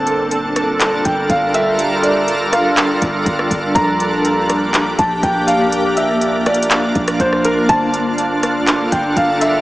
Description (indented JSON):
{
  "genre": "hip hop, atmospheric cloud-rap",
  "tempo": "122 BPM",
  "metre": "4/4",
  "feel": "half-time",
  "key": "unclear",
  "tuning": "A4 = 439 Hz",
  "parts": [
    { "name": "felt-muted upright piano", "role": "melody", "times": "0.0-9.6 s", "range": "Bb4 to Bb5", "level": "-18 LUFS", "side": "equal", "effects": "diffuse ambient delay" },
    { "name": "shimmering ambient pad", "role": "sustained chords", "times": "0.0-9.6 s", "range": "G3 to Bb4", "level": "-16 LUFS", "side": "equal", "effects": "chorus, built-in reverb, sidechain pumping" },
    { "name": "warm 808-style bass", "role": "bass", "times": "0.0-9.6 s", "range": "G1 to Bb1", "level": "-27 LUFS", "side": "equal", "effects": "none" },
    { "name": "smooth R&B drum kit", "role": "drums", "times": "0.1-9.5 s", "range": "handclaps, hi-hat, kick drum, rim click", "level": "-19 LUFS", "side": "equal", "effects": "none" }
  ],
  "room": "wet church reverb, RT60 3.5 s",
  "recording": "dreamy mix soaked in reverb, small speaker sound",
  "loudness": "-13 LUFS",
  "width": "side -17 dB against mid",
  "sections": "0.0-9.6 A section",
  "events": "none",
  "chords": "0.0 Gm7; 3.8 Bb6; 7.7 Gm7"
}